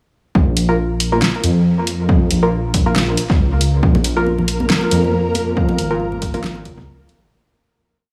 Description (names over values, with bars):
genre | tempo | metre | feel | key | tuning
deep dubstep | 138 BPM | 4/4 | swing 56% on 16ths, half-time | Bb minor | A4 = 440 Hz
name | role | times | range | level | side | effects
dark detuned saw bass | bass | 0.3-7.3 s | Ab1 to F2 | -20 LUFS | equal | tube saturation
electronic kick drum | drums | 0.3-6.9 s | none | -19 LUFS | equal | overdrive
deep house drum kit | drums | 0.6-7.2 s | hi-hat, snare drum | -23 LUFS | equal | overdrive
filtered dub chord stab | stabs | 0.7-6.4 s | Bb3 to Bb4 | -24 LUFS | equal | chorus, dub echo
deep dark ambient pad | sustained chords | 4.6-7.3 s | F3 to Bb4 | -25 LUFS | equal | chorus, built-in reverb
flickering grainy texture | texture | 4.1-7.3 s | Bb3 to Bb4 | -30 LUFS | equal | built-in reverb
congas and bongos | percussion | 3.9-7.2 s | none | -28 LUFS | equal | dub echo
room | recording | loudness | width
digital ambience | studio reverb | -17 LUFS | mono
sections
0.4-7.3 drop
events
drop 0.4-7.3; fade-out 5.0-7.3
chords
0.4 Bb5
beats
| 0.35 0.79 1.22 1.66 | 2.09 2.52 2.96 3.39 | 3.83 4.26 4.70 5.13 | 5.57 6.00 6.44 6.87